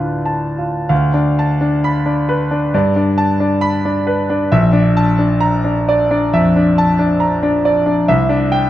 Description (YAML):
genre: classical, impressionist solo piano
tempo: 61-70 BPM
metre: 4/4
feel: rubato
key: D minor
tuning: A4 = 440 Hz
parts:
  - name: clear concert grand piano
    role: solo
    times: 0.0-8.7 s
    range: Bb1 to B5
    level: -12 LUFS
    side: equal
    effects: none
room: moderate recital hall reverb, RT60 1.5 s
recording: close, detailed microphones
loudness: -12 LUFS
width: side -13 dB against mid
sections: 0.9-8.7 A section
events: none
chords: 0.0 Dm6; 2.7 Gadd9; 4.5 Bbmaj7#11; 8.1 Cadd9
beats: | 0.91 1.84 2.73 3.61 | 4.52 5.43 6.34 7.21 | 8.08